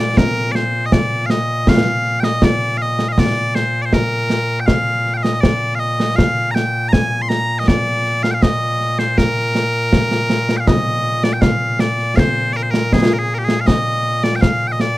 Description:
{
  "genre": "scottish traditional, Scottish pipe music",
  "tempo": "80 BPM",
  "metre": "2/4",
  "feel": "straight",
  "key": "Bb mixolydian",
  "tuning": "A4 = 440 Hz",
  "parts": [
    { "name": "loud bright bagpipes", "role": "melody", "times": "0.0-15.0 s", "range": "Bb2 to C6", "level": "-17 LUFS", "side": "equal", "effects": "none" },
    { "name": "concert snare drum and concert bass drum", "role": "drums", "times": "0.2-15.0 s", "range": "none", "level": "-16 LUFS", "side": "equal", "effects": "none" }
  ],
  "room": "little or no reverb",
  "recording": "dry, close 1970s-style studio recording",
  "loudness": "-14 LUFS",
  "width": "side -17 dB against mid",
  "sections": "0.0-10.7 A section; 10.7-15.0 B section",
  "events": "none",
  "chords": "none"
}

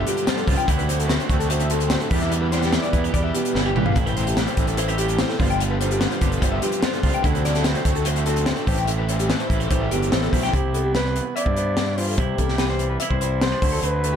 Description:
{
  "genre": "math rock and midwest emo",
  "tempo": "146 BPM",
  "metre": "4/4",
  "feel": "straight",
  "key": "unclear",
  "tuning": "A4 = 439 Hz",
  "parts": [
    { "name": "twangy electric guitar", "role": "accompaniment", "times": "0.0-14.2 s", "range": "E2 to A4", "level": "-29 LUFS", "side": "right 10 dB", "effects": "none" },
    { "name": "electric guitar through a small old amp", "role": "arpeggios", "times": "0.0-14.2 s", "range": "G4 to G5", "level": "-27 LUFS", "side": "left 7 dB", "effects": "spring reverb" },
    { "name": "overdriven semi-hollow guitar", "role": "riff", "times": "0.0-10.5 s", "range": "G2 to F#4", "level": "-27 LUFS", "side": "right 2 dB", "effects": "tremolo" },
    { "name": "fuzz fingered electric bass", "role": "bass", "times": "0.0-14.2 s", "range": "G1 to G2", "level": "-24 LUFS", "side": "equal", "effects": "overdrive" },
    { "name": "crisp fusion drum kit", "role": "drums", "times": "0.1-14.1 s", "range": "hi-hat, kick drum, snare drum, toms", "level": "-23 LUFS", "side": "left 1 dB", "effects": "none" },
    { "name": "breathy trumpet", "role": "melody", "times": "10.5-14.2 s", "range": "F4 to D5", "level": "-26 LUFS", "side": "equal", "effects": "slapback echo" }
  ],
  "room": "little or no reverb",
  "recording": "dark, warm production",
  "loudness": "-19 LUFS",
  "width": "side -8 dB against mid",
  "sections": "0.0-10.5 A section; 10.5-14.2 B section",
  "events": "drum fill 3.5-4.0",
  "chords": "0.0 G7sus4; 0.7 D9; 2.1 Em7; 4.0 Am7; 5.4 G7sus4; 7.2 D9; 8.7 Am7; 10.5 Cmaj9; 13.6 Dsus2"
}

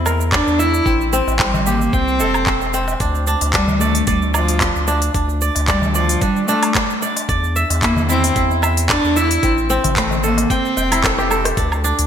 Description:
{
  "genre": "organic downtempo",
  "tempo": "112 BPM",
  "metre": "4/4",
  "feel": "swing 54% on 16ths",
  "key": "unclear",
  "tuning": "A4 = 440 Hz",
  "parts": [
    { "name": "kora", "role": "arpeggios", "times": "0.0-12.1 s", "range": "C4 to G5", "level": "-21 LUFS", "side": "right 1 dB", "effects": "low-pass filter, digital delay" },
    { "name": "round analog bass", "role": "bass", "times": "0.0-12.1 s", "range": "E1 to E2", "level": "-20 LUFS", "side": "equal", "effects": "tube saturation, sidechain pumping" },
    { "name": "afro-pop drum kit", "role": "drums", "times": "0.1-12.1 s", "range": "handclaps, hi-hat, rim click, shaker, woodblock", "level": "-21 LUFS", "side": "right 1 dB", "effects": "gated reverb" },
    { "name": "darbuka", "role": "percussion", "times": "0.1-11.5 s", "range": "none", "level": "-28 LUFS", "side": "left 5 dB", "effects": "none" },
    { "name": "rich cello", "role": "melody", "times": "0.3-11.3 s", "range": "F3 to E4", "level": "-20 LUFS", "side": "equal", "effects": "digital delay" },
    { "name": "electronic kick drum", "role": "drums", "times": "0.3-11.7 s", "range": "none", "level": "-23 LUFS", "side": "equal", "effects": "none" }
  ],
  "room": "moderate lush hall reverb, RT60 1.9 s, studio reverb",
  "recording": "bright 1980s-style digital production",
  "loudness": "-14 LUFS",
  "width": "side -8 dB against mid",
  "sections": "0.0-11.6 A section",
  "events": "drum fill 11.0-11.6",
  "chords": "0.0 C9/E (rootless); 0.9 Am7; 3.0 D5; 7.3 Cadd9/E (rootless); 9.4 Am7"
}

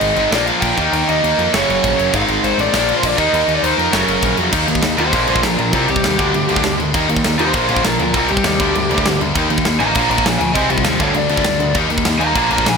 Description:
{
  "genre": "punk rock",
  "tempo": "200 BPM",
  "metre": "4/4",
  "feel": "straight",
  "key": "unclear",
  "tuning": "A4 = 440 Hz",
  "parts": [
    { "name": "raw garage guitar", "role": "melody", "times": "0.0-12.8 s", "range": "F4 to Bb5", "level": "-18 LUFS", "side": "equal", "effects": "overdrive" },
    { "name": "high-gain distorted guitar", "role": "riff", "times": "0.0-12.8 s", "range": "Gb2 to Eb4", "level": "-21 LUFS", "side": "left 2 dB", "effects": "distortion" },
    { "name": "sludgy distorted guitar", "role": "riff", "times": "0.0-12.8 s", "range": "Gb2 to Eb4", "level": "-21 LUFS", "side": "left 13 dB", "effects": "overdrive" },
    { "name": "tight distorted guitar", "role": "riff", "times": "0.0-12.8 s", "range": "Gb2 to Eb4", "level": "-21 LUFS", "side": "right 15 dB", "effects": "distortion" },
    { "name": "growling picked electric bass", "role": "bass", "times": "0.0-12.8 s", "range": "Gb1 to F2", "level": "-23 LUFS", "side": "equal", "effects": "overdrive" },
    { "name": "tight metal drum kit", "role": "drums", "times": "0.0-12.7 s", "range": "crash cymbal, kick drum, snare drum", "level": "-21 LUFS", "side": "equal", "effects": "none" }
  ],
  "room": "light reverb",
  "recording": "none",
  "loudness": "-13 LUFS",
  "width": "side -5 dB against mid",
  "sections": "0.0-4.5 A section; 4.5-12.8 B section",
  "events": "half time 0.0-4.5; overdriven electric guitar solo 4.5-12.8",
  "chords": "0.3 Bb; 0.8 Eb; 1.5 Gb; 2.1 Ab; 2.7 Bb; 3.2 Eb; 3.9 Gb; 4.5 Eb; 5.1 Bb; 5.7 Cm; 6.2 Gm/D; 6.9 Eb; 7.5 Bb; 8.1 Cm; 8.6 Gm/D; 9.3 Eb; 10.0 Bb; 10.6 Cm; 11.0 Gm/D; 11.8 Eb"
}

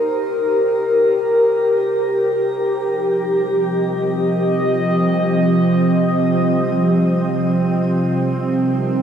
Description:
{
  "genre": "ambient",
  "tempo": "free time",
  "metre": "none",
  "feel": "none",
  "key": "unclear",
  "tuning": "A4 = 440 Hz",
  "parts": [
    { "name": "warbly tape-like pad", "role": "sustained chords", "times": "0.0-9.0 s", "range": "C3 to Eb5", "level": "-15 LUFS", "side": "equal", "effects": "chorus, built-in reverb, shimmer reverb" },
    { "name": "analog drone", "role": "drone", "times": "1.1-9.0 s", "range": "C3 to G3", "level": "-28 LUFS", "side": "right 1 dB", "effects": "chorus" }
  ],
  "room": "wet huge ambient reverb, RT60 7.1 s",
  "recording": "dreamy mix soaked in reverb",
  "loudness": "-15 LUFS",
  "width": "side -8 dB against mid",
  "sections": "0.0-9.0 A section",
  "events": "fade-in on synth drone 0.0-9.0",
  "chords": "0.0 Cm7; 2.7 F5; 7.9 Cm7"
}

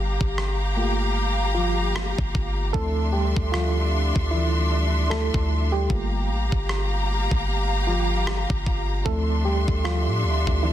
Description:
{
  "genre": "contemporary R&B",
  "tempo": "76 BPM",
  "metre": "4/4",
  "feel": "swing 58% on 16ths",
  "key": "unclear",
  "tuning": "A4 = 443 Hz",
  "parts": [
    { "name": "FM electric piano with auto-pan", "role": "accompaniment", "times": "0.0-10.7 s", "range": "E3 to A4", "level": "-28 LUFS", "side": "right 2 dB", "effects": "none" },
    { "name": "rich studio string section", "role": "sustained chords", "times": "0.0-10.7 s", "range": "D4 to C6", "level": "-28 LUFS", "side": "left 2 dB", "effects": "none" },
    { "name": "warm 808-style bass", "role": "bass", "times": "0.0-10.7 s", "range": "G1 to A2", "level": "-24 LUFS", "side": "equal", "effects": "none" },
    { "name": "crisp 8-bit digital drum machine", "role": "drums", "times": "0.2-10.6 s", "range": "kick drum, rim click", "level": "-28 LUFS", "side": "equal", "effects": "vintage 12-bit sampler grit" }
  ],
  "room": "little or no reverb",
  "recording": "dense, heavily limited modern master",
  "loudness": "-21 LUFS",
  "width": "side -12 dB against mid",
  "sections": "0.0-10.7 A section",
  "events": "FM electric piano solo 0.0-10.7",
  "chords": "0.0 Gm7; 2.7 Dm9; 5.9 Gm7; 9.1 Dm9"
}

